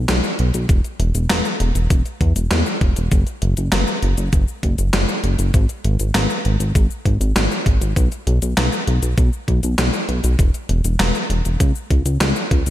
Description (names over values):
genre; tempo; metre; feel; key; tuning
synthwave; 99 BPM; 4/4; straight; unclear; A4 = 440 Hz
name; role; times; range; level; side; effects
chorused synth bass; bass; 0.0-12.7 s; E1 to E2; -18 LUFS; equal; tube saturation
gated 80s digital drum machine; drums; 0.1-12.7 s; handclaps, hi-hat, shaker, snare drum; -21 LUFS; left 1 dB; gated reverb, gated reverb snare, overdrive, slapback echo
electronic kick drum; drums; 0.7-12.6 s; none; -17 LUFS; equal; overdrive
room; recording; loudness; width
light reverb; none; -16 LUFS; side -13 dB against mid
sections
0.0-12.7 A section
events
none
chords
none